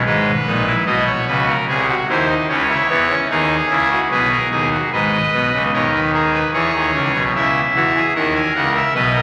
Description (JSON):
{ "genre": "classical, baroque-style 3-part fugue for pipe organ", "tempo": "74 BPM", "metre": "3/4", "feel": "straight", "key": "unclear", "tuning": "A4 = 440 Hz", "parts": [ { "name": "pipe organ, trumpet", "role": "solo", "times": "0.0-9.2 s", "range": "G#1 to G#5", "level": "-17 LUFS", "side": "equal", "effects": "none" } ], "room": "wet church reverb, RT60 3.4 s", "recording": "vinyl crackle", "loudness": "-17 LUFS", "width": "mono", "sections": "0.0-4.9 A section; 4.9-9.2 B section", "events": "none", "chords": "0.1 G#m; 1.7 G#7/B#; 2.5 C#m; 4.1 G#m/B; 4.9 G#m; 6.5 C#m; 7.4 F#7/C#" }